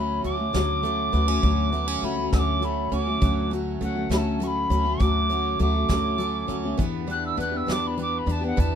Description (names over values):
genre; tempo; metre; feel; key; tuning
acoustic folk duo or small band; 67 BPM (dotted quarters); 6/8; straight; D major; A4 = 439 Hz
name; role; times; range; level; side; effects
mellow tin whistle; melody; 0.0-8.8 s; F#5 to F#6; -27 LUFS; equal; none
picked steel-string acoustic guitar; accompaniment; 0.0-8.8 s; D3 to G4; -29 LUFS; left 6 dB; none
picked plugged-in twelve-string acoustic guitar; arpeggios; 0.0-8.8 s; F#3 to D4; -30 LUFS; right 9 dB; none
upright bass; bass; 0.0-8.8 s; D2 to E2; -27 LUFS; equal; none
soft brush drum kit; drums; 0.2-8.7 s; hi-hat, kick drum, snare drum; -28 LUFS; equal; none
room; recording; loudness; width
light reverb; none; -22 LUFS; side -8 dB against mid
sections
0.0-8.8 A section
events
tin whistle solo 0.0-8.8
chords
0.0 Dmaj7; 6.8 Em7